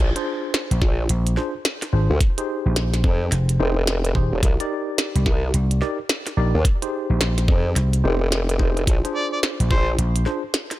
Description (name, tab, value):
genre	glitch hop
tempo	108 BPM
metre	4/4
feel	swing 62% on 16ths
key	F dorian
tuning	A4 = 438 Hz
part	formant-sweep wobble bass	bass	0.0-10.0 s	Eb1 to F2	-21 LUFS	equal	chorus
part	tine electric piano	stabs	0.2-10.4 s	D4 to D5	-28 LUFS	equal	overdrive, fast stereo tremolo, sidechain pumping, tape echo
part	glitchy drum kit	drums	0.2-10.8 s	hi-hat, snare drum	-24 LUFS	equal	none
part	vintage slap bass	bass	0.7-10.2 s	Eb1 to C2	-19 LUFS	equal	none
part	electronic kick drum	drums	0.8-9.8 s	none	-19 LUFS	equal	none
part	warm harmonica	melody	9.2-9.9 s	C5 to D5	-27 LUFS	equal	vintage 12-bit sampler grit, tape echo
room	little or no reverb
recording	none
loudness	-18 LUFS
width	side -16 dB against mid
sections	0.0-10.8 A section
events	none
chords	0.0 Bb7; 2.2 Fm7; 4.4 Cm7; 6.7 Fm7; 8.9 Bb7